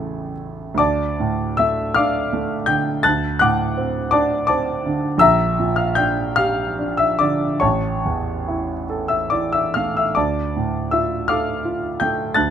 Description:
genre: classical, romantic nocturne for solo piano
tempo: 42-59 BPM (dotted quarters)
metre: 6/8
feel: rubato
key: D minor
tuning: A4 = 440 Hz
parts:
  - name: clear concert grand piano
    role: solo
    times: 0.0-12.5 s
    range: A0 to A6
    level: -17 LUFS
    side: equal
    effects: none
room: little or no reverb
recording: close, detailed microphones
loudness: -17 LUFS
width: side -9 dB against mid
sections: 0.8-12.5 A section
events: none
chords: 0.0 A; 0.8 Dm; 3.0 D7; 5.2 Gm/Bb; 7.6 A; 10.2 Dm

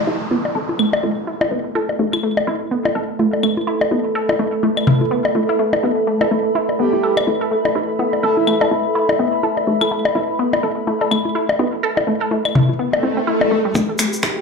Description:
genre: minimal techno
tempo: 125 BPM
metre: 4/4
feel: swing 58% on 16ths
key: unclear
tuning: A4 = 440 Hz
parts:
  - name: downlifter, swell and riser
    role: sound effects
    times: 0.0-2.2, 13.0-14.4 s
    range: none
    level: -24 LUFS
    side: right 1 dB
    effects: none
  - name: deep dark ambient pad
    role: texture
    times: 0.5-14.4 s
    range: A4 to B5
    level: -22 LUFS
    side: right 1 dB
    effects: chorus, built-in reverb, sidechain pumping
  - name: resonant blip pluck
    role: riff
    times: 0.1-14.3 s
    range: G3 to A4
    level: -21 LUFS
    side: equal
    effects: chorus, phaser, sidechain pumping, tape echo
  - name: woody FM bass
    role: bass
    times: 0.1-14.2 s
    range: A1 to E2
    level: -26 LUFS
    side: right 1 dB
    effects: sidechain pumping, high-pass filter
  - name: electronic congas, bongos, claves and toms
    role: percussion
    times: 0.3-13.5 s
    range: none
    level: -20 LUFS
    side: left 3 dB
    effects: digital delay
  - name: breathy flute-like synth lead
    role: melody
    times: 6.8-8.6 s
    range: E4 to A4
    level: -20 LUFS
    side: right 2 dB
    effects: lush chorus, digital delay
  - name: flickering grainy texture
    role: texture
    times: 13.9-14.4 s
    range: G4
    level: -28 LUFS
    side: right 1 dB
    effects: built-in reverb, sidechain pumping
  - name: electronic kick drum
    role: drums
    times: 13.8-14.3 s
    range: none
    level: -22 LUFS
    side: right 1 dB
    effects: overdrive, high-pass filter on kick, high-pass filter on room
  - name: tube shaker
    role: percussion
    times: 13.8-14.3 s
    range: none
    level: -28 LUFS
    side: left 2 dB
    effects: none
  - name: techno drum kit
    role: drums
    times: 14.0-14.3 s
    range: finger snaps, hi-hat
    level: -19 LUFS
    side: equal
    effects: high-pass filter on snare, high-pass filter on hats, high-pass filter on room
room: wet studio reverb, RT60 0.5 s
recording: played on a big sound system in a bare room, large studio reverb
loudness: -16 LUFS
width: side -4 dB against mid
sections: 0.0-13.8 A section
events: filter sweep on synth pluck 0.0-13.8; swell 13.0-13.8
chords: 0.0 A5

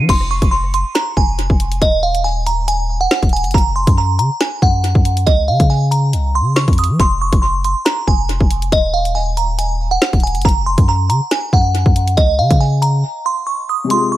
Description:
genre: hip hop, drill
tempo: 139 BPM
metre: 4/4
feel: half-time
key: F phrygian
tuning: A4 = 440 Hz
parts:
  - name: glassy synth bell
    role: melody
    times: 0.0-14.2 s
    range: Eb5 to Eb6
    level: -18 LUFS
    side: right 2 dB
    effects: chorus, tremolo, tape echo
  - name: long sustained 808-style bass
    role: bass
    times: 0.0-13.0 s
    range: Eb1 to F3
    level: -17 LUFS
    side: equal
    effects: none
  - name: drill drum kit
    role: drums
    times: 0.1-14.0 s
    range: crash cymbal, hi-hat, kick drum, snare drum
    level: -15 LUFS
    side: equal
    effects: tape echo
  - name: dark grand piano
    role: accompaniment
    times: 13.8-14.2 s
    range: C3 to Ab4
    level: -16 LUFS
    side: left 5 dB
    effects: none
room: little or no reverb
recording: echo-heavy mix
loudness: -13 LUFS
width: side -14 dB against mid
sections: 0.1-14.2 A section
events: break 13.0-13.9; kick muted 13.9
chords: 0.1 Fm; 1.8 N.C.; 3.5 Gb5; 5.3 Db; 7.0 Fm; 8.7 N.C.; 10.4 Gb5; 12.2 Db5

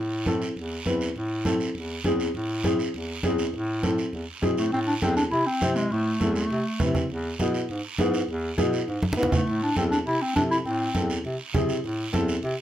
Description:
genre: latin, cumbia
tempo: 202 BPM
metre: 4/4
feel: straight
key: A harmonic minor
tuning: A4 = 440 Hz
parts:
  - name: warm bass clarinet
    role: bass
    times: 0.0-12.6 s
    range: E2 to C3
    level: -29 LUFS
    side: equal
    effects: none
  - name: dark upright piano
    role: accompaniment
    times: 0.3-12.3 s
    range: B3 to C5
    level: -27 LUFS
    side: left 1 dB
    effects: none
  - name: congas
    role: percussion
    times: 0.3-12.6 s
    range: none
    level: -28 LUFS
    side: right 1 dB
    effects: none
  - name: guiro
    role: percussion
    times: 0.3-12.6 s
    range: none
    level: -36 LUFS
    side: right 5 dB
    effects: none
  - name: warm clarinet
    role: melody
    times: 4.6-6.9, 9.3-11.2 s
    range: G#3 to E4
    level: -25 LUFS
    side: equal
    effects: none
room: moderate studio reverb, RT60 0.5 s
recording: none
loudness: -23 LUFS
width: side -12 dB against mid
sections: 0.0-4.7 A section; 4.7-12.6 B section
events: drum fill 9.0-9.5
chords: 0.0 Am; 7.1 E; 9.5 Am

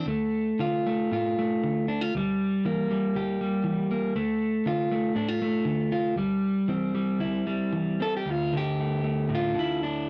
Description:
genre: folk, solo fingerstyle acoustic guitar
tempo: 117 BPM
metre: 4/4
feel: rubato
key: D minor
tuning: A4 = 439 Hz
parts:
  - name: electric guitar at the edge of break-up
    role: solo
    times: 0.0-10.1 s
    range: D2 to A4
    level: -27 LUFS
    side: equal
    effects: none
room: little or no reverb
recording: dry, close 1970s-style studio recording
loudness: -27 LUFS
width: mono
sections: 0.0-8.3 A section; 8.3-10.1 B section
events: none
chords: 0.0 Dm; 2.1 Edim/D; 4.2 Dm; 6.2 C/D; 8.3 Dmadd9

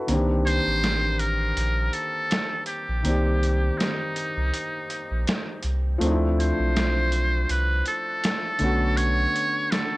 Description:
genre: lo-fi hip hop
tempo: 81 BPM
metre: 4/4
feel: swing 56% on 16ths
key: C dorian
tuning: A4 = 441 Hz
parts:
  - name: warm upright piano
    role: accompaniment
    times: 0.0-10.0 s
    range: D3 to D5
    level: -28 LUFS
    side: left 1 dB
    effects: cassette tape
  - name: warm sub bass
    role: bass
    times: 0.1-9.3 s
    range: A1 to D2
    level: -24 LUFS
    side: equal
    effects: none
  - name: trip hop sampler-style drum kit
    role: drums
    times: 0.1-9.9 s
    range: hi-hat, snare drum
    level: -28 LUFS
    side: right 1 dB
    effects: vintage 12-bit sampler grit
  - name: trumpet with metal mute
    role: melody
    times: 0.5-10.0 s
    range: Eb4 to C#5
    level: -26 LUFS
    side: equal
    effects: none
room: little or no reverb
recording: dry, gritty hardware recording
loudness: -22 LUFS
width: side -21 dB against mid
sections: 0.1-10.0 A section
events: break 0.1-10.0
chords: 0.1 Cm9; 6.0 Dm9; 8.6 Bm9

